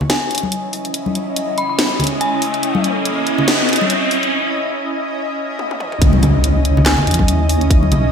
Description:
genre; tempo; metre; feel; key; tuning
deep dubstep; 142 BPM; 4/4; swing 56% on 16ths, half-time; C# minor; A4 = 440 Hz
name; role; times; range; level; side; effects
granular cloud pad; sustained chords; 0.0-8.1 s; C#4 to D#5; -20 LUFS; right 1 dB; built-in reverb
congas; percussion; 0.0-8.0 s; none; -21 LUFS; left 2 dB; none
riser and impact; sound effects; 1.1-7.7 s; none; -22 LUFS; equal; none
dark detuned synth bell; melody; 0.1-2.8, 6.9-7.2 s; G#5 to B5; -24 LUFS; left 1 dB; chorus, low-pass filter, dub echo
garage drum kit; drums; 0.1-8.0 s; handclaps, hi-hat, snare drum, toms; -20 LUFS; equal; gated reverb
deep soft wobble bass; bass; 6.0-8.1 s; B1 to E2; -16 LUFS; equal; chorus, tube saturation
electronic kick drum; drums; 6.0-7.8 s; none; -13 LUFS; equal; none
room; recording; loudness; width
moderate lush hall reverb, RT60 2.0 s; bright 1980s-style digital production, high-pass filter; -14 LUFS; side -7 dB against mid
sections
0.0-6.0 A section; 6.0-8.1 B section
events
build-up 0.0-6.0; riser 1.1-4.3; break 4.3-6.0; drum fill 5.6-6.0; drop 6.0-8.1; impact 6.0-7.7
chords
0.0 C#madd9

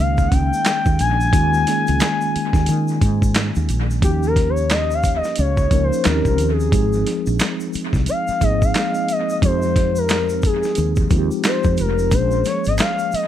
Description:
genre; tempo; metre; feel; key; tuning
R&B, neo-soul; 89 BPM; 4/4; swing 60% on 16ths; unclear; A4 = 439 Hz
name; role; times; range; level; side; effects
gliding portamento lead; melody; 0.0-13.3 s; G4 to Ab5; -21 LUFS; left 3 dB; chorus, analog delay
mellow tine electric piano; accompaniment; 0.0-13.3 s; Eb3 to Bb4; -24 LUFS; right 1 dB; medium stereo tremolo
woody fretless electric bass; bass; 0.0-13.2 s; F1 to Eb3; -20 LUFS; equal; wide subtle chorus
dusty soul sampler-style drum kit; drums; 0.2-13.3 s; handclaps, hi-hat, kick drum, snare drum; -20 LUFS; equal; analog delay
tube shaker and finger snaps; percussion; 0.2-13.3 s; none; -33 LUFS; right 2 dB; analog delay
room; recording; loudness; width
little or no reverb; echo-heavy mix; -16 LUFS; side -11 dB against mid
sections
0.0-4.0 A section; 4.0-13.3 B section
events
soft synth lead solo 4.0-13.3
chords
0.0 Eb7sus4; 4.0 Eb9; 6.0 Eb13; 6.7 Ab6; 9.4 Fm9; 12.1 Bbm7

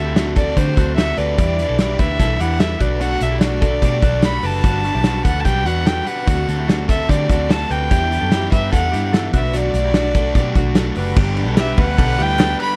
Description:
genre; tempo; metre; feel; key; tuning
jangly indie pop; 147 BPM; 4/4; straight; G major; A4 = 440 Hz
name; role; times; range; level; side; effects
warm violin; melody; 0.0-12.8 s; C5 to B5; -24 LUFS; equal; none
crunchy overdriven guitar; accompaniment; 0.0-12.8 s; G2 to B4; -27 LUFS; equal; none
direct-recorded clean electric guitar; arpeggios; 0.0-12.8 s; D4 to B4; -29 LUFS; equal; phaser
vintage muted picked electric bass; bass; 0.0-12.5 s; F#1 to D3; -24 LUFS; equal; none
loose indie drum kit; drums; 0.2-12.7 s; crash cymbal, hi-hat, kick drum, ride cymbal, snare drum; -20 LUFS; equal; none
clear trumpet; second line; 11.2-12.8 s; B4; -32 LUFS; equal; none
group handclap; percussion; 11.6-12.5 s; none; -35 LUFS; equal; none
room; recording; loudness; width
little or no reverb; none; -17 LUFS; mono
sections
0.0-11.2 A section; 11.2-12.8 B section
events
none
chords
0.0 D7; 1.4 Em7; 2.8 Bm7; 4.6 Gmaj7; 6.3 D7; 7.9 Em7; 9.3 Bm7; 11.2 G

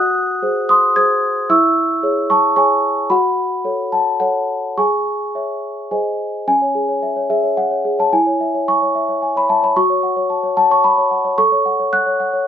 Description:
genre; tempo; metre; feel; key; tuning
classical, lullaby for celesta; 111 BPM; 3/4; straight; C# minor; A4 = 440 Hz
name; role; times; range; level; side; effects
celesta; solo; 0.0-12.5 s; C#4 to G#6; -14 LUFS; equal; none
room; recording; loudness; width
moderate studio reverb, RT60 0.9 s; band playing live in one room; -14 LUFS; side -9 dB against mid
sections
0.0-6.5 A section; 6.5-12.5 B section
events
none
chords
0.0 G#7/F#; 1.5 C#m/E; 3.1 F#m; 4.8 C#m/G#; 5.9 G#; 6.5 C#m; 8.1 C#m/E; 9.8 F#m; 11.4 F#m/A

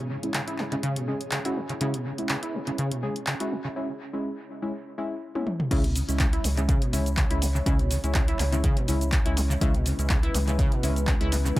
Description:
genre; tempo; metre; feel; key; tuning
acid house; 123 BPM; 4/4; swing 54% on 16ths; C# minor; A4 = 439 Hz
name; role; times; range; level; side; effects
dark analog pad; sustained chords; 0.0-11.6 s; G#3 to C#5; -36 LUFS; equal; chorus, sidechain pumping
acid bass, saw; riff; 0.0-11.6 s; B2 to E4; -31 LUFS; equal; lush chorus, sidechain pumping, analog delay
granular cloud pad; texture; 0.0-3.8 s; C#4 to C#5; -39 LUFS; equal; built-in reverb, sidechain pumping
deep mellow chord stab; stabs; 0.2-11.6 s; G#3 to G#4; -32 LUFS; left 1 dB; chorus, dub echo
punchy analog drum machine; drums; 0.2-11.6 s; crash cymbal, handclaps, hi-hat, shaker, toms; -32 LUFS; equal; dub echo
round analog bass; bass; 5.7-11.6 s; C#2; -26 LUFS; equal; sidechain pumping
electronic kick drum; drums; 5.7-11.6 s; none; -25 LUFS; equal; none
room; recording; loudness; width
light reverb, digital ambience; echo-heavy mix; -24 LUFS; side -17 dB against mid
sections
0.0-5.7 A section; 5.7-11.6 B section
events
filter sweep on synth stab 0.0-5.7; break 3.8-5.7; drum fill 5.3-5.7; drop 5.7-11.6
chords
0.0 C#m

